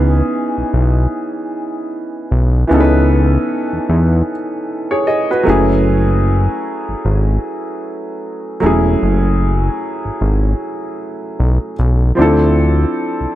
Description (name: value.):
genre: R&B, neo-soul.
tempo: 76 BPM.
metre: 4/4.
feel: swing 59% on 16ths.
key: unclear.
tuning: A4 = 440 Hz.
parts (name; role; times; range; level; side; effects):
clear baby grand piano; accompaniment; 0.0-13.4 s; E3 to D#5; -17 LUFS; equal; none.
fat analog bass; bass; 0.0-13.3 s; E1 to E2; -13 LUFS; equal; none.
room: light reverb, small room reverb.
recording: none.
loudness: -13 LUFS.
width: side -14 dB against mid.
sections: 0.0-13.4 A section.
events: none.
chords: 0.0 C#m9; 5.5 F#m9; 12.2 Dm9.